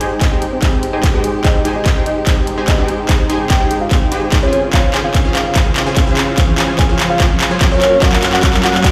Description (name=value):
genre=future bass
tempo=146 BPM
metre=4/4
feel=half-time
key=Ab major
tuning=A4 = 437 Hz
part: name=rich studio string section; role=sustained chords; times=0.0-8.9 s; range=Gb2 to G4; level=-28 LUFS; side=equal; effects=sidechain pumping, low-pass filter
part: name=supersaw stab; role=riff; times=0.0-8.9 s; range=Db4 to Ab5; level=-21 LUFS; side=equal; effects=sidechain pumping, low-pass filter
part: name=big-room dance drum kit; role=drums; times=0.0-8.9 s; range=handclaps, hi-hat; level=-21 LUFS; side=equal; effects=none
part: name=riser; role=sound effects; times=1.7-8.9 s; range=none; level=-26 LUFS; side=equal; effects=none
part: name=soft octave-layered synth lead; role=melody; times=0.2-8.8 s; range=Ab4 to Ab5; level=-22 LUFS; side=equal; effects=chorus, sidechain pumping, delay
part: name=electronic kick drum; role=drums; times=0.2-8.9 s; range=none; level=-17 LUFS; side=equal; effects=none
room=moderate digital room reverb, RT60 1.1 s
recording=played on a big sound system in a bare room, stone room reverb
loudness=-14 LUFS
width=mono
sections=0.0-8.9 A section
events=build-up 0.0-8.9; drum fill 0.0-8.9; filter sweep on soft synth lead 0.0-8.9; riser 1.7-8.9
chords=0.0 Abmaj7; 4.5 Dbmaj7; 7.8 Gbmaj7